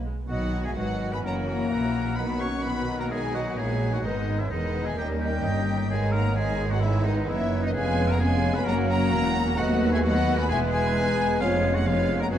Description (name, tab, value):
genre	quick classical-period movement for symphony orchestra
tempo	130 BPM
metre	4/4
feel	rubato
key	B major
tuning	A4 = 440 Hz
part	warm chamber violin section	melody	0.0-12.4 s	D#5 to C#6	-33 LUFS	left 2 dB	none
part	mellow clarinet	second line	0.0-12.4 s	G#4 to F#5	-34 LUFS	left 2 dB	none
part	mellow small flute group	second line	0.0-12.4 s	B4 to A#5	-35 LUFS	right 2 dB	none
part	rich chamber viola section	accompaniment	0.0-12.4 s	D#3 to B3	-31 LUFS	equal	none
part	dark French horn section	sustained chords	0.0-12.4 s	D#3 to C#4	-31 LUFS	left 4 dB	none
part	rich chamber cello section	bass	0.0-12.4 s	D#2 to B2	-30 LUFS	right 2 dB	none
part	rich chamber double bass section	bass	0.0-12.4 s	E1 to D#2	-29 LUFS	right 1 dB	none
part	clear chamber violin section	second line	0.3-12.4 s	B3 to F#4	-35 LUFS	left 3 dB	none
part	clear oboe	second line	0.3-12.4 s	D#4 to C#5	-34 LUFS	right 1 dB	none
room	moderate scoring stage reverb, RT60 2.0 s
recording	dark, warm production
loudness	-22 LUFS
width	side -10 dB against mid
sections	0.3-12.4 A section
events	none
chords	0.3 B; 1.2 F#7; 2.2 B; 4.0 G#m; 5.0 D#7; 5.9 G#m; 7.8 C#7/E#; 8.7 F#; 9.6 B7/D#; 10.5 E; 11.4 C#7/E#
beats	| 0.29 0.77 1.24 1.71 | 2.17 2.64 3.10 3.58 | 4.05 4.51 4.98 5.45 | 5.91 6.38 6.84 7.30 | 7.76 8.21 8.67 9.12 | 9.58 10.04 10.50 10.96 | 11.41 11.87 12.33